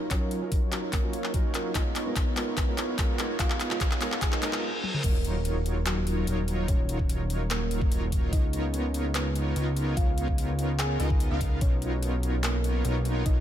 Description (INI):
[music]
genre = future bass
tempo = 146 BPM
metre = 4/4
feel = half-time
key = Eb minor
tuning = A4 = 440 Hz
[part]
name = kalimba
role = melody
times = 0.0-13.4 s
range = Gb3 to Ab5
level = -36 LUFS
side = right 1 dB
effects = sidechain pumping, low-pass filter, digital delay
[part]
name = soft supersaw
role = riff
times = 0.0-13.4 s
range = Gb3 to F5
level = -33 LUFS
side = right 1 dB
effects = sidechain pumping, low-pass filter
[part]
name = riser, reverse cymbal and impact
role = sound effects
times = 2.3-6.7 s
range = none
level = -40 LUFS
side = equal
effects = none
[part]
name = felt-muted upright piano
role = accompaniment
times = 0.1-4.6 s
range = Gb3 to Bb4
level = -37 LUFS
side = right 2 dB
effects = vintage 12-bit sampler grit, sidechain pumping, dub echo
[part]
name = electronic kick drum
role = drums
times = 0.1-13.3 s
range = none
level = -26 LUFS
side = equal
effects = none
[part]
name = trap drum kit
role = drums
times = 0.1-13.3 s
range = crash cymbal, handclaps, hi-hat, toms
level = -33 LUFS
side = left 1 dB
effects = none
[part]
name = fat analog bass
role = bass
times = 5.0-13.4 s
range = Eb1 to Db2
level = -28 LUFS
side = equal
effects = sidechain pumping
[sound]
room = little or no reverb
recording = none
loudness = -25 LUFS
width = side -11 dB against mid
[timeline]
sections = 0.0-5.0 A section; 5.0-13.4 B section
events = build-up 0.0-5.0; drum fill 0.0-4.6, 4.8; filter sweep on supersaw synth 0.0-5.0; filter sweep on kalimba 0.0-5.0; reverse cymbal 4.2-5.0; stop 4.6-5.0; drop 5.0-13.4; impact 5.0-6.7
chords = 0.0 Ebm9; 1.8 Db13; 5.0 Ebm9; 8.3 Db13; 11.6 Bmaj9#11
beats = | 0.11 0.52 0.93 1.34 | 1.75 2.16 2.57 2.98 | 3.40 3.81 4.22 4.63 | 5.04 5.45 5.86 6.27 | 6.68 7.09 7.50 7.92 | 8.33 8.74 9.15 9.56 | 9.97 10.38 10.79 11.20 | 11.61 12.03 12.44 12.85 | 13.26